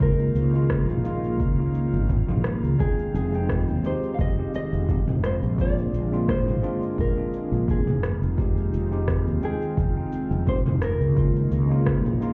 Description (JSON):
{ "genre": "sunset chillout", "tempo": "86 BPM", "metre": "4/4", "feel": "swing 54% on 16ths", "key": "F minor", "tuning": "A4 = 440 Hz", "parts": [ { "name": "nylon-string guitar", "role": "melody", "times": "0.0-12.3 s", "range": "Ab4 to F5", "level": "-34 LUFS", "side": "equal", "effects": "digital delay" }, { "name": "tine electric piano", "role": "accompaniment", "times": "0.0-12.3 s", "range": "Ab3 to G5", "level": "-33 LUFS", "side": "equal", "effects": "low-pass filter, delay" }, { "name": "airy breathy pad", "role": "sustained chords", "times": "0.0-12.3 s", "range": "D3 to F4", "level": "-33 LUFS", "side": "equal", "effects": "chorus" }, { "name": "fretless electric bass", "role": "bass", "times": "0.0-12.2 s", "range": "F1 to Eb2", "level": "-26 LUFS", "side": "equal", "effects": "none" }, { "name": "deep house drum kit", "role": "drums", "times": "0.0-12.3 s", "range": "cabasa, rim click, toms", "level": "-32 LUFS", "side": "equal", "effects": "overdrive" }, { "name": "electronic kick drum", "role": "drums", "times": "0.0-12.0 s", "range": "none", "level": "-28 LUFS", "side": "equal", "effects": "overdrive" } ], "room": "light reverb, digital ambience", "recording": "heard muffled through a wall, club reverb, EQ", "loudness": "-24 LUFS", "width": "mono", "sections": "0.0-12.3 A section", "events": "filter sweep on tine electric piano 0.0-12.3", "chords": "0.0 Db69; 2.8 Fm7; 5.6 Bb7; 8.0 Fm7; 11.2 Db69", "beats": "| 0.01 0.70 1.40 2.10 | 2.80 3.50 4.19 4.89 | 5.59 6.29 6.98 7.68 | 8.38 9.08 9.77 10.47 | 11.17 11.87" }